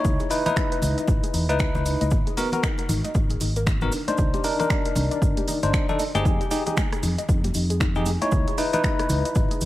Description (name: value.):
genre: deep house.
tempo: 116 BPM.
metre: 4/4.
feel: swing 60% on 16ths.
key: unclear.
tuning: A4 = 441 Hz.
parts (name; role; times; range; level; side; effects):
warbly dusty pluck; arpeggios; 0.0-9.7 s; D4 to Eb5; -32 LUFS; left 3 dB; chorus, cassette tape, sidechain pumping, analog delay.
bell-like tine electric piano; stabs; 0.0-9.7 s; Cb4 to Db5; -25 LUFS; left 1 dB; medium stereo tremolo, sidechain pumping, analog delay.
fingered electric bass; bass; 0.0-9.7 s; G1 to F2; -25 LUFS; equal; tube saturation, sidechain pumping.
electronic kick drum; drums; 0.0-9.5 s; none; -24 LUFS; equal; overdrive, small room ambience.
cabasa; percussion; 0.0-9.7 s; none; -38 LUFS; right 3 dB; tape echo.
punchy analog drum machine; drums; 0.2-9.7 s; finger snaps, hi-hat, rim click; -32 LUFS; right 1 dB; small room ambience.
congas; percussion; 0.2-9.6 s; none; -34 LUFS; left 1 dB; tape echo.
room: light reverb.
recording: echo-heavy mix, vinyl crackle.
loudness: -20 LUFS.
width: side -15 dB against mid.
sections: 0.0-9.7 A section.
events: none.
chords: 0.0 Dbm9; 2.1 Abm9; 3.9 Cm9; 6.3 Fm9; 8.3 Dbm9.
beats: | 0.05 0.56 1.08 1.60 | 2.12 2.63 3.15 3.67 | 4.18 4.70 5.22 5.74 | 6.25 6.77 7.29 7.80 | 8.32 8.84 9.36.